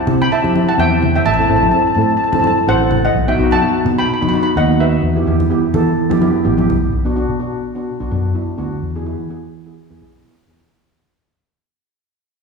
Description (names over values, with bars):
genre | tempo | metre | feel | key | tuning
calypso | 127 BPM | 4/4 | swing 54% on 16ths | E minor | A4 = 440 Hz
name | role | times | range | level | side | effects
steel pan | melody | 0.0-6.7 s | B4 to B5 | -17 LUFS | left 2 dB | none
steel pan | accompaniment | 0.1-10.7 s | B3 to A4 | -18 LUFS | right 2 dB | none
fingered electric bass | bass | 0.1-10.7 s | A1 to E3 | -18 LUFS | equal | none
congas | percussion | 0.1-6.8 s | none | -22 LUFS | left 2 dB | none
room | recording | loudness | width
wet scoring stage reverb, RT60 1.9 s | recorded in a church or concert hall, studio ambience | -13 LUFS | side -4 dB against mid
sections
0.0-6.9 A section; 6.9-10.7 B section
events
fade-out 6.9-10.7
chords
0.0 C6; 1.3 Am; 3.1 B; 5.0 Em; 6.9 Bm; 8.8 E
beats
0.31 0.78 | 1.25 1.73 2.20 2.67 | 3.14 3.62 4.09 4.56 | 5.04 5.51 5.98 6.45 | 6.93 7.40 7.88 8.35 | 8.82 9.30 9.78 10.25